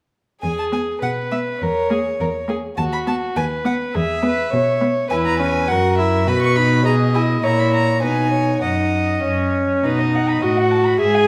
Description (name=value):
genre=quick classical-period movement for string quartet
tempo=103 BPM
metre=2/4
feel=straight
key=E major, B major from 5.1 s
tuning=A4 = 439 Hz
part: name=rich violin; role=melody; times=0.4-11.3 s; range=C#5 to C#6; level=-26 LUFS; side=equal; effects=none
part: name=dark violin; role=second line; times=0.4-11.3 s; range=F#4 to B5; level=-24 LUFS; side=equal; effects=none
part: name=rich cello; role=bass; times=0.4-11.3 s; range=D#2 to B2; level=-24 LUFS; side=equal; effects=none
part: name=warm viola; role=accompaniment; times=0.7-11.3 s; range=A#3 to G#4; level=-23 LUFS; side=equal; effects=none
room=wet recital hall reverb, RT60 1.3 s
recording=none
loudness=-19 LUFS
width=mono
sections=0.4-9.8 A section; 9.8-11.3 B section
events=none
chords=0.4 E; 1.6 A#dim/E; 2.8 B/D#; 4.0 E5; 5.1 C#m/E; 5.7 F#7; 6.3 B; 6.8 E/B; 7.4 A#dim; 8.0 B; 8.6 D#m/F#; 9.2 F#5; 9.8 B; 10.4 B7/A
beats=| 0.43 1.02 | 1.61 2.20 | 2.78 3.37 | 3.95 4.53 | 5.11 5.69 | 6.27 6.85 | 7.43 8.02 | 8.62 9.23 | 9.83 10.42 | 11.01